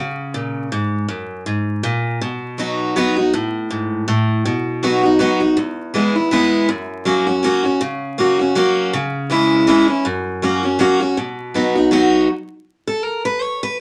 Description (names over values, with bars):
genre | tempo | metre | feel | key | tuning
bluegrass | 161 BPM | 3/4 | swing 56% on 8ths | B major | A4 = 439 Hz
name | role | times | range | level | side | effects
picked steel-string acoustic guitar | solo | 0.0-13.8 s | E2 to C#5 | -18 LUFS | equal | none
room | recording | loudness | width
wet small room reverb, RT60 0.5 s | vinyl crackle | -18 LUFS | mono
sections
0.0-3.3 A section; 3.3-12.3 A section; 12.3-13.8 B section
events
steel-string acoustic guitar solo 12.3-13.8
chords
0.0 C#5; 1.1 F#; 2.2 B; 3.3 N.C.; 4.5 B; 5.6 E; 6.7 F#; 8.9 C#m; 10.1 F#; 11.2 B; 12.3 N.C.